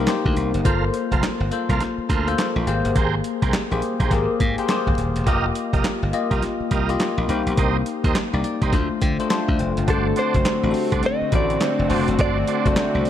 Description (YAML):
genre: R&B, new jack swing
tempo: 104 BPM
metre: 4/4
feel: swing 62% on 16ths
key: unclear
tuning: A4 = 438 Hz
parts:
  - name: bell-like tine electric piano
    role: accompaniment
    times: 0.0-13.1 s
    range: A3 to A5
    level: -24 LUFS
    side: left 5 dB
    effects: phaser
  - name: glassy slap bass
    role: bass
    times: 0.0-13.0 s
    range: Eb1 to D3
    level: -24 LUFS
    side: equal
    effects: none
  - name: boom bap sampler-style drum kit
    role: drums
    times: 0.1-13.1 s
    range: handclaps, hi-hat, kick drum, snare drum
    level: -24 LUFS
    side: equal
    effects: none
  - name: tonewheel organ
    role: stabs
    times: 0.6-12.7 s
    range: F#4 to G5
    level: -29 LUFS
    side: right 8 dB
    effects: chorus vibrato, ping-pong delay
  - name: direct-recorded clean electric guitar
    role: melody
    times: 9.9-13.1 s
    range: A4 to Eb5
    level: -24 LUFS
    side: right 1 dB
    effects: ping-pong delay
  - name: brassy analog pad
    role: sustained chords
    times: 9.9-13.1 s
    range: D3 to F#4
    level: -27 LUFS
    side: right 1 dB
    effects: chorus
room: light reverb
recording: none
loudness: -19 LUFS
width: side -10 dB against mid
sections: 0.0-9.9 A section; 9.9-13.1 B section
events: tine electric piano fill 8.2-9.9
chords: 0.0 Cm7; 0.7 Gm11; 2.7 Abmaj9; 5.3 F9sus4; 7.3 Cm7; 8.7 Dm7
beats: 0.07 | 0.65 1.23 1.80 2.38 | 2.96 3.54 4.11 4.69 | 5.27 5.84 6.42 7.00 | 7.58 8.15 8.73 9.30 | 9.88 10.46 11.04 11.61 | 12.19 12.77